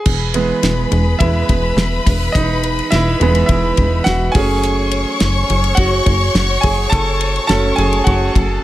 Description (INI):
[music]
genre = piano-driven pop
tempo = 105 BPM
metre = 4/4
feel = straight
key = E major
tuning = A4 = 443 Hz
[part]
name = warm symphonic violin section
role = second line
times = 0.0-8.6 s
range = A4 to C#6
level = -21 LUFS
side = left 2 dB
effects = none
[part]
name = clear concert grand piano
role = accompaniment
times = 0.0-8.6 s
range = E3 to A5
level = -18 LUFS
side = right 3 dB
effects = none
[part]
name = plucky analog bass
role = bass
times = 0.1-8.6 s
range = E1 to F#1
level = -18 LUFS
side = equal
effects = none
[part]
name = damped 70s drum kit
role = drums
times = 0.1-8.5 s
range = crash cymbal, hi-hat, kick drum, ride cymbal, snare drum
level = -18 LUFS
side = equal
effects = none
[sound]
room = light reverb, small room reverb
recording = none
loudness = -13 LUFS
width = side -14 dB against mid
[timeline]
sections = 0.1-8.6 A section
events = grand piano solo 0.1-8.6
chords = 0.1 E; 4.3 F#m